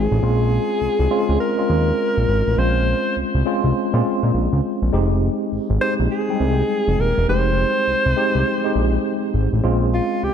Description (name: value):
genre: R&B, new jack swing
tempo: 102 BPM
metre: 4/4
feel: swing 63% on 16ths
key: F minor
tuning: A4 = 442 Hz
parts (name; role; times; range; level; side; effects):
- breathy alto saxophone; melody; 0.0-10.3 s; F4 to C5; -21 LUFS; equal; ping-pong delay
- tine electric piano; accompaniment; 0.0-10.3 s; G3 to G5; -22 LUFS; equal; overdrive, medium stereo tremolo
- fat analog bass; bass; 0.0-10.3 s; Eb1 to Bb2; -19 LUFS; equal; none
room: light reverb, studio ambience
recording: dark, warm production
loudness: -17 LUFS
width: side -8 dB against mid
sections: 0.0-10.3 A section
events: none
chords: 0.2 Bbm9; 4.9 Fm9; 9.6 Bbm9